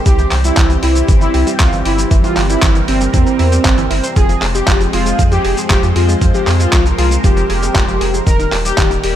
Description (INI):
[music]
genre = italo disco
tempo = 117 BPM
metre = 4/4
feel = straight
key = F minor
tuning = A4 = 440 Hz
[part]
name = lush unison pad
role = sustained chords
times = 0.0-9.2 s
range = Eb3 to C5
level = -21 LUFS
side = equal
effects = chorus, phaser
[part]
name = analog synth brass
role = melody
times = 0.1-9.2 s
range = C4 to Bb4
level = -18 LUFS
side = equal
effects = chorus, tape echo
[part]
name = analog pluck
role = arpeggios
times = 0.1-9.1 s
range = Eb3 to C5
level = -23 LUFS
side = right 5 dB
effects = chorus, tape echo
[part]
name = round analog bass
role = bass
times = 0.1-9.2 s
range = Eb1 to F2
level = -16 LUFS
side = equal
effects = none
[part]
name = dusty soul sampler-style drum kit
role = drums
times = 0.1-9.1 s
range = cabasa, handclaps, hi-hat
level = -20 LUFS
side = equal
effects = overdrive
[part]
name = electronic kick drum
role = drums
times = 0.1-8.9 s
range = none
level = -13 LUFS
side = equal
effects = overdrive
[sound]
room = little or no reverb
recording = none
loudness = -11 LUFS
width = side -11 dB against mid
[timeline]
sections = 0.0-9.2 A section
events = none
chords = 0.1 C; 4.2 Fm; 8.3 Eb